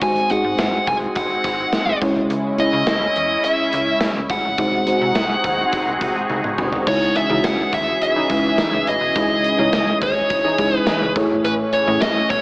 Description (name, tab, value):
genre	1980s-style pop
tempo	105 BPM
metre	4/4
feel	straight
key	C# minor from 6.9 s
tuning	A4 = 439 Hz
part	dark smooth lead guitar	melody	0.0-12.4 s	B4 to G#5	-23 LUFS	equal	overdrive, shimmer reverb
part	mellow FM electric piano	accompaniment	0.0-12.4 s	G#2 to D#5	-24 LUFS	equal	chorus, shimmer reverb
part	sweeping resonant pad	sustained chords	0.0-12.4 s	B#2 to G#4	-28 LUFS	equal	chorus, shimmer reverb
part	slap-like FM bass	bass	0.0-12.4 s	G#1 to C#3	-33 LUFS	equal	none
part	gated 80s drum kit	drums	0.0-12.4 s	crash cymbal, hi-hat, kick drum, snare drum, tambourine, toms	-27 LUFS	equal	gated reverb
part	funky polysynth comp	stabs	7.3-12.0 s	E3 to G#4	-30 LUFS	equal	chorus, shimmer reverb
room	moderate lush hall reverb, RT60 2.3 s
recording	AM radio sound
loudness	-19 LUFS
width	mono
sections	0.0-6.9 A section; 6.9-12.4 B section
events	drum fill 6.3-6.9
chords	0.0 G#7; 2.0 C#m; 4.6 G#7/B#; 6.9 C#madd9; 11.2 Amaj7